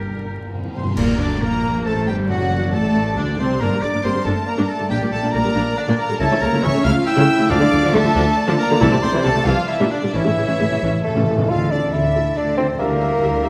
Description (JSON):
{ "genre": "classical, dramatic, fast romantic movement for symphony orchestra", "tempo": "137 BPM", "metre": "3/4", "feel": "straight", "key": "G minor, D minor from 6.2 s", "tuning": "A4 = 440 Hz", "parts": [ { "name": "warm oboe", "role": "second line", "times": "0.0-13.5 s", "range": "D4 to A5", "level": "-31 LUFS", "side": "equal", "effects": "none" }, { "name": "warm symphonic viola section", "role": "accompaniment", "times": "0.0-13.5 s", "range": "C3 to E5", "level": "-25 LUFS", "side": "equal", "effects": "none" }, { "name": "timpani", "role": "percussion", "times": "0.0-2.9, 10.1-13.4 s", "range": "G2 to D3", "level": "-28 LUFS", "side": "equal", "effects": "none" }, { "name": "dark French horn section", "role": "sustained chords", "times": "0.1-13.5 s", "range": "D3 to F4", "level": "-27 LUFS", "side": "equal", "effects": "none" }, { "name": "warm symphonic violin section", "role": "melody", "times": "0.7-13.5 s", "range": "A4 to F6", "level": "-29 LUFS", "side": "equal", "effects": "none" }, { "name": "clear symphonic violin section", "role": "second line", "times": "0.7-13.5 s", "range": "D4 to F5", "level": "-32 LUFS", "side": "equal", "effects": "none" }, { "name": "mellow hollow small flute group", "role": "second line", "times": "0.7-13.5 s", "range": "A4 to F6", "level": "-32 LUFS", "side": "equal", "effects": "none" }, { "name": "bright clarinet", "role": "second line", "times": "1.0-13.5 s", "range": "G4 to G5", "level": "-30 LUFS", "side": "equal", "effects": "none" }, { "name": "warm symphonic cello section", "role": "bass", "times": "1.0-13.5 s", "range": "D2 to D3", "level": "-26 LUFS", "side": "equal", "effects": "none" }, { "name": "warm symphonic double bass section", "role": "bass", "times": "1.0-13.5 s", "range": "F#1 to D2", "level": "-27 LUFS", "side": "equal", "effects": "none" }, { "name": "clash cymbals and concert bass drum", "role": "percussion", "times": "1.0-1.8 s", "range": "none", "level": "-32 LUFS", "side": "equal", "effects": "none" }, { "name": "warm bassoon", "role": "accompaniment", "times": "11.0-13.5 s", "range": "A3 to F4", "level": "-23 LUFS", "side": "equal", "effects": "none" } ], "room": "wet scoring stage reverb, RT60 1.9 s", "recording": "vinyl crackle", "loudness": "-18 LUFS", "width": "mono", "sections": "1.0-11.5 A section; 11.5-13.5 B section", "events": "timpani fill 0.0-1.0, 10.1-11.5; band accent 1.0-1.4", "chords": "0.0 Gm; 1.0 Gm/Bb; 2.3 D7/F#; 3.6 Gm; 4.9 Gm/Bb; 6.2 A/C#; 7.5 Dm; 8.8 Am/C; 9.7 Gm/Bb; 10.1 A; 11.5 Dm; 12.8 Em7b5/D" }